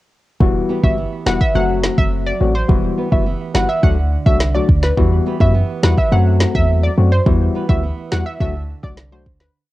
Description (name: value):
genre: dancehall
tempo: 105 BPM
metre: 4/4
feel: straight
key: E minor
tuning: A4 = 439 Hz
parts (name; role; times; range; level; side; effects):
- percussive organ stab; accompaniment; 0.4-9.3 s; F#3 to F#4; -21 LUFS; left 6 dB; chorus, cassette tape
- flamenco guitar; arpeggios; 0.4-9.7 s; D3 to B4; -26 LUFS; right 7 dB; cassette tape, analog delay
- warm 808-style bass; bass; 0.4-9.5 s; E1 to F#2; -17 LUFS; equal; none
- afro-pop drum kit; drums; 0.4-9.5 s; kick drum, rim click, snare drum; -17 LUFS; equal; cassette tape
- analog pluck; melody; 0.8-9.5 s; B4 to F#5; -22 LUFS; right 1 dB; chorus, cassette tape
room: little or no reverb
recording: home recording on cassette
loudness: -13 LUFS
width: side -17 dB against mid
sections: 0.4-9.5 verse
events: fade-out 7.3-9.5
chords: 0.4 Emadd9; 1.5 F#dim; 2.7 Emadd9; 3.8 D; 5.0 Emadd9; 6.1 F#dim; 7.3 Emadd9; 8.4 D